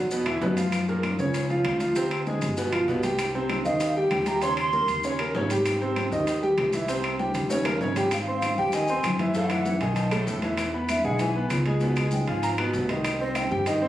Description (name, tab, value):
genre	Afro-Cuban jazz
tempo	195 BPM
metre	4/4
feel	straight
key	unclear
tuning	A4 = 440 Hz
part	clear grand piano	accompaniment	0.0-13.9 s	A2 to C6	-26 LUFS	right 1 dB	none
part	upright bass	bass	0.0-13.9 s	G1 to G2	-29 LUFS	left 1 dB	none
part	bongos	percussion	0.1-13.8 s	none	-37 LUFS	left 3 dB	none
part	congas	percussion	0.1-13.9 s	none	-37 LUFS	left 1 dB	none
part	maracas	percussion	0.1-13.8 s	none	-41 LUFS	left 2 dB	none
part	claves	percussion	0.3-13.5 s	none	-34 LUFS	left 5 dB	none
part	timbales	percussion	0.3-13.8 s	none	-34 LUFS	right 3 dB	none
part	breathy mellow jazz flute	melody	3.6-5.2, 8.1-13.7 s	Eb5 to C6	-28 LUFS	right 1 dB	none
room	moderate studio reverb, RT60 0.6 s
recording	recorded on a phone in the room, studio reverb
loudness	-23 LUFS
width	side -13 dB against mid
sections	0.0-8.1 A section; 8.1-13.9 B section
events	drum fill 7.3-8.1; flute solo 8.1-13.9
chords	0.1 Esus2; 0.7 Gbmaj7; 2.0 Abmaj7#11; 2.6 G7; 3.2 Cm; 4.4 Eb6; 5.7 Abmaj7; 6.9 C5; 7.5 Eb7; 8.1 Abmaj7; 9.3 Gbm7; 10.0 B7; 10.6 E6; 11.8 Db7; 13.0 Cm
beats	0.12 0.42 | 0.73 1.04 1.34 1.65 | 1.96 2.27 2.58 2.88 | 3.19 3.50 3.81 4.11 | 4.42 4.73 5.04 5.34 | 5.65 5.96 6.27 6.58 | 6.88 7.19 7.50 7.81 | 8.12 8.42 8.73 9.04 | 9.35 9.66 9.96 10.27 | 10.58 10.89 11.20 11.51 | 11.81 12.12 12.43 12.74 | 13.05 13.36 13.66